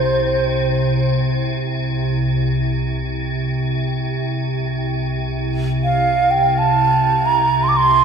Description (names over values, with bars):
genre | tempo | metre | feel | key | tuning
world meditative, free-time meditation music | free time | none | none | unclear | A4 = 441 Hz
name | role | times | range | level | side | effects
bright xiao | melody | 0.0-8.0 s | C5 to D6 | -16 LUFS | right 3 dB | shimmer reverb
icy glass pad | drone | 0.0-8.0 s | C2 to C3 | -19 LUFS | equal | chorus, built-in reverb
room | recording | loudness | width
wet cathedral reverb, RT60 4.9 s | none | -16 LUFS | side -6 dB against mid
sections
0.0-4.4 A section; 4.4-8.0 A section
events
none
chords
none